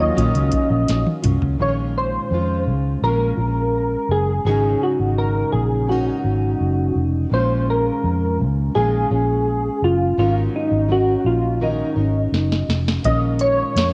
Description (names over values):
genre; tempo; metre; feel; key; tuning
indie pop, bedroom pop; 84 BPM; 4/4; straight; unclear; A4 = 440 Hz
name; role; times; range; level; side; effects
soft electric-piano-like synth keys; melody; 0.0-13.9 s; Eb4 to Eb5; -24 LUFS; equal; ensemble chorus, cassette tape, tape echo
fingerpicked plugged-in steel-string acoustic guitar; accompaniment; 0.0-13.9 s; Ab2 to Bb4; -27 LUFS; equal; analog chorus, vibrato effect, cassette tape
warm analog pad; sustained chords; 0.0-1.6 s; Eb3 to F4; -31 LUFS; equal; chorus, cassette tape
vintage muted fingered electric bass; bass; 0.0-13.9 s; F1 to Bb2; -23 LUFS; equal; none
soft vintage rhythm box; drums; 0.2-1.6, 12.3-13.9 s; hi-hat, kick drum, snare drum, toms; -26 LUFS; equal; cassette tape
room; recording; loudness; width
light reverb; home recording on cassette; -19 LUFS; mono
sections
0.0-1.6 A section; 1.6-13.9 B section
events
synth keys solo 0.0-1.6; drum fill 0.9-1.6, 12.3-13.0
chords
0.0 Ebm9; 1.6 Bbm11; 4.5 Ab9sus4; 7.3 Bbm7; 10.2 Ab9sus4; 13.0 Bbm11